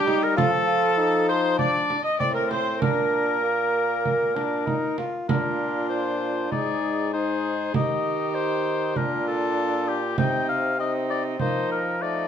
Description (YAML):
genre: classical, renaissance-style consort dance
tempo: 98 BPM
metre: 4/4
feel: straight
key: Bb major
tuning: A4 = 440 Hz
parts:
  - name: warm oboe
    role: melody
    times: 0.0-12.3 s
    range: G4 to G5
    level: -26 LUFS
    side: left 5 dB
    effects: none
  - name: rich viola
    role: second line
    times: 0.0-12.3 s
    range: Eb4 to Eb5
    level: -28 LUFS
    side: right 6 dB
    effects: none
  - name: clear bassoon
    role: accompaniment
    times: 0.0-12.3 s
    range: A3 to F4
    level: -28 LUFS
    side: left 3 dB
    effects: none
  - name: brilliant trombone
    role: bass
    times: 0.0-12.3 s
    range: Ab2 to G3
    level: -31 LUFS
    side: right 2 dB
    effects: none
  - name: frame drum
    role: percussion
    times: 0.1-11.7 s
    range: none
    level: -28 LUFS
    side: right 4 dB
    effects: none
room: moderate stone room reverb, RT60 1.1 s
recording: none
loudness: -21 LUFS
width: side -8 dB against mid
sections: 0.0-5.3 A section; 5.3-12.3 B section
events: none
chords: 0.4 F7; 2.8 Bb; 6.5 Ab; 7.7 Eb; 9.0 Bb; 10.2 Cm; 11.4 F7sus4